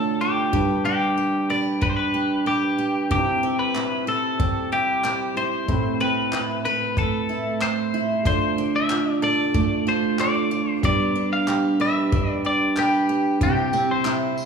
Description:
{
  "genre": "acoustic pop",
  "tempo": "93 BPM",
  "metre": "4/4",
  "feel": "straight",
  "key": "C major",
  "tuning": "A4 = 440 Hz",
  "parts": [
    { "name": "twelve-string electric guitar", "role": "melody", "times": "0.0-14.4 s", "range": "G4 to F5", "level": "-24 LUFS", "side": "left 2 dB", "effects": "none" },
    { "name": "picked steel-string acoustic guitar", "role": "accompaniment", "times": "0.0-14.5 s", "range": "A2 to C5", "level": "-23 LUFS", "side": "right 4 dB", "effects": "none" },
    { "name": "warm upright piano", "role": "accompaniment", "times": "0.0-14.5 s", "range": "G3 to B5", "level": "-30 LUFS", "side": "left 4 dB", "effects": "none" },
    { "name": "natural country drum kit", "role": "drums", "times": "0.5-14.5 s", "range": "handclaps, kick drum, tambourine", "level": "-26 LUFS", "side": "left 1 dB", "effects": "none" }
  ],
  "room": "wet recital hall reverb, RT60 1.6 s",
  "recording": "recorded in a church or concert hall, small room ambience",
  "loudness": "-20 LUFS",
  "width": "side -6 dB against mid",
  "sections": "0.0-14.5 A section",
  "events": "none",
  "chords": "0.0 Dm; 0.5 G; 3.1 C; 5.7 Amadd9; 8.3 Dm; 10.8 G; 13.4 C",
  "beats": "| 0.53 1.18 1.82 2.46 | 3.11 3.75 4.39 5.04 | 5.68 6.33 6.97 7.62 | 8.26 8.90 9.55 10.19 | 10.84 11.48 12.12 12.77 | 13.41 14.05"
}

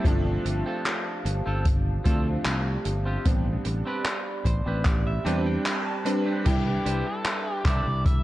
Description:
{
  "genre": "vaporwave",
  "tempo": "75 BPM",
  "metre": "4/4",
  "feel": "straight",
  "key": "A minor",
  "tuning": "A4 = 441 Hz",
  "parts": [
    { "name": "clear electric grand piano", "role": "accompaniment", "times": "0.0-8.2 s", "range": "F3 to B4", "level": "-30 LUFS", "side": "right 1 dB", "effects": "ensemble chorus, vintage 12-bit sampler grit, tape echo" },
    { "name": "warbly tape-like pad", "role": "sustained chords", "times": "0.0-8.2 s", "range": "G4 to D6", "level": "-37 LUFS", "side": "right 2 dB", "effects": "chorus, built-in reverb" },
    { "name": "clean electric guitar", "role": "riff", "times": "0.0-7.9 s", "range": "C4 to A5", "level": "-35 LUFS", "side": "right 2 dB", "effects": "lush chorus, tape echo" },
    { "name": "fingered electric bass", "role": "bass", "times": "0.0-8.2 s", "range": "G1 to E2", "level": "-27 LUFS", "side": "equal", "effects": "none" },
    { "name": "kick drum", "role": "drums", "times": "0.0-8.2 s", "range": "none", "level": "-24 LUFS", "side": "equal", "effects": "none" },
    { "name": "open jazz drum kit", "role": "drums", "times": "0.1-8.2 s", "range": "crash cymbal, handclaps, hi-hat", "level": "-31 LUFS", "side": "equal", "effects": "gated reverb" },
    { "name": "biting lead guitar", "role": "melody", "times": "6.5-8.2 s", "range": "G4 to E5", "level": "-31 LUFS", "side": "left 1 dB", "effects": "overdrive, tape echo" }
  ],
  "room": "light reverb, small room ambience",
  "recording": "cassette tape",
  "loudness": "-23 LUFS",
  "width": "side -16 dB against mid",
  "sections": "0.0-6.5 A section; 6.5-8.2 B section",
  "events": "clean electric guitar fill 4.1-6.5; band accent 5.7-6.1",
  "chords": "0.1 G9sus4; 3.3 Am11; 6.5 Cmaj9",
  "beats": "| 0.05 0.85 1.65 2.45 | 3.25 4.05 4.85 5.65 | 6.45 7.25 8.05"
}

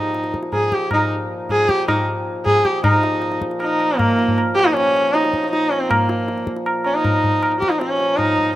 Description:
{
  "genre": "indian classical, Hindustani",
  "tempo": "157 BPM",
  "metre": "4/4",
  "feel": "straight",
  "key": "Bb raga bageshri",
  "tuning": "A4 = 441 Hz",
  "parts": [
    { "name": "rich sarangi", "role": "melody", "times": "0.0-8.6 s", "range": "Bb3 to Ab4", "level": "-18 LUFS", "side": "equal", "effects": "none" },
    { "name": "pedal harmonium", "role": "drone", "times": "0.0-8.6 s", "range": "Bb2 to F3", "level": "-27 LUFS", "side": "equal", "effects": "none" },
    { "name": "tabla", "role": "percussion", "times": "0.1-8.5 s", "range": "none", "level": "-22 LUFS", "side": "equal", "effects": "none" }
  ],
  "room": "light reverb, studio reverb",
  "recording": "rough home demo mix",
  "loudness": "-16 LUFS",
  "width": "side -14 dB against mid",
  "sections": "0.0-2.8 A section; 2.8-8.6 B section",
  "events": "none",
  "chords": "none",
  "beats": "0.14 0.53 0.92 | 1.30 1.69 2.07 2.46 | 2.84 3.23 3.61 3.99 | 4.38 4.76 5.14 5.52 | 5.91 6.29 6.67 7.05 | 7.43 7.81 8.19"
}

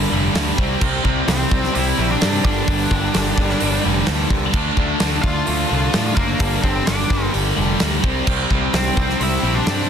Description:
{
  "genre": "quiet-loud alternative rock",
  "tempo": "129 BPM",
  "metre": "4/4",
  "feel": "straight",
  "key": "G dorian",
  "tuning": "A4 = 440 Hz",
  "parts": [
    { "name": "warm symphonic string section", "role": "sustained chords", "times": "0.0-9.9 s", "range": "E4 to A5", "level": "-33 LUFS", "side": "left 4 dB", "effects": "none" },
    { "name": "cranked stack guitar", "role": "riff", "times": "0.0-9.9 s", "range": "G2 to D4", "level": "-25 LUFS", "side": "left 15 dB", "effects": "overdrive" },
    { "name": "cranked stack guitar", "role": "riff", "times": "0.0-9.9 s", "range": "G2 to D4", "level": "-24 LUFS", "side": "right 16 dB", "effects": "overdrive, spring reverb" },
    { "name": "heavy high-gain guitar", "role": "riff", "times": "0.0-9.9 s", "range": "G2 to D4", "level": "-26 LUFS", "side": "left 2 dB", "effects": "distortion" },
    { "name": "growling picked electric bass", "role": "bass", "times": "0.0-9.8 s", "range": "F1 to A2", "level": "-23 LUFS", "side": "equal", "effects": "overdrive" },
    { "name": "big rock drum kit", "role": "drums", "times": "0.4-9.8 s", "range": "crash cymbal, hi-hat, kick drum, snare drum", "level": "-21 LUFS", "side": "equal", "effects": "none" },
    { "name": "octave-fuzz lead guitar", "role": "melody", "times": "1.3-9.9 s", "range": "Bb3 to F5", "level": "-25 LUFS", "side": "left 1 dB", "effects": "distortion, analog delay" }
  ],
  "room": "little or no reverb",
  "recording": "dense, heavily limited modern master",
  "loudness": "-16 LUFS",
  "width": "side -8 dB against mid",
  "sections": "0.0-9.9 A section",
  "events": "none",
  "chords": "0.0 Gmadd9; 0.6 Cadd9; 2.4 Gmadd9; 4.5 Dm; 6.4 Gmadd9; 8.0 Cadd9",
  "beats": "0.35 | 0.81 1.28 1.74 2.21 | 2.67 3.14 3.61 4.07 | 4.54 5.00 5.47 5.94 | 6.40 6.87 7.33 7.80 | 8.27 8.73 9.20 9.67"
}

